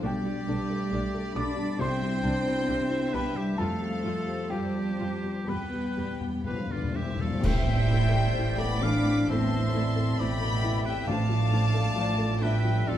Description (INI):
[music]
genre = cinematic, emotional film score for orchestra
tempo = 66 BPM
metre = 4/4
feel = rubato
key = A minor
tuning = A4 = 440 Hz
[part]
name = rich studio violin section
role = melody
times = 0.0-13.0 s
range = G4 to D6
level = -37 LUFS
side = left 3 dB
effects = none
[part]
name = clear oboe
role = second line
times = 0.0-13.0 s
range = F4 to F5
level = -37 LUFS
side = right 1 dB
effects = none
[part]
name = rich studio violin section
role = second line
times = 0.0-13.0 s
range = B4 to B5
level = -40 LUFS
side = left 2 dB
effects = none
[part]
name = felt-muted upright piano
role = accompaniment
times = 0.0-13.0 s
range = A1 to D6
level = -33 LUFS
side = left 2 dB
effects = none
[part]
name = warm studio viola section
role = accompaniment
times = 0.0-13.0 s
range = E3 to G4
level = -39 LUFS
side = equal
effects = none
[part]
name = warm French horn section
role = sustained chords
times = 0.0-13.0 s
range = B2 to F4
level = -35 LUFS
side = left 3 dB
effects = none
[part]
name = dark studio double bass section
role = bass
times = 0.0-13.0 s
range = A1 to F2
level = -30 LUFS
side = right 2 dB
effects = none
[part]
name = warm studio cello section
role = bass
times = 0.0-13.0 s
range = A2 to D4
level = -32 LUFS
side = right 2 dB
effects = none
[part]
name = warm clarinet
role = second line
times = 0.1-6.5 s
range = G4 to D5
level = -37 LUFS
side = left 1 dB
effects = none
[part]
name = timpani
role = percussion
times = 5.5-12.4 s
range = E2 to A2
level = -35 LUFS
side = left 2 dB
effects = none
[part]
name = clash cymbals and concert bass drum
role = percussion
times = 7.4-9.2 s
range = none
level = -32 LUFS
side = equal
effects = none
[part]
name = small flute group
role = second line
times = 7.5-13.0 s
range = C5 to F5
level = -38 LUFS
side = left 1 dB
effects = none
[sound]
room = wet recital hall reverb, RT60 1.8 s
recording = dark, warm production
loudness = -25 LUFS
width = side -11 dB against mid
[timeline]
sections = 0.0-7.4 A section; 7.4-13.0 B section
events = timpani fill 5.5-7.4; band accent 7.4-8.3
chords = 0.0 Gadd9/B; 1.8 Cadd9; 3.6 Fsus2; 5.5 Em; 7.4 Am7; 11.1 Dmadd9/A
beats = | 0.03 0.91 1.79 2.68 | 3.59 4.51 5.48 6.46 | 7.43 8.35 9.27 10.17 | 11.06 11.96 12.87